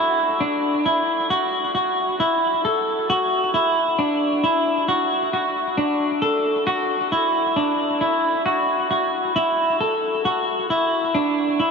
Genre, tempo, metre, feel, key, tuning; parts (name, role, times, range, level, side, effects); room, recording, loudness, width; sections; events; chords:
dream pop; 67 BPM; 4/4; straight; D major; A4 = 441 Hz
clean electric guitar; solo; 0.0-11.7 s; D4 to A4; -18 LUFS; equal; wide subtle chorus, ping-pong delay
wet huge ambient reverb, RT60 8.6 s; dreamy mix soaked in reverb; -18 LUFS; side -5 dB against mid
0.0-11.7 A section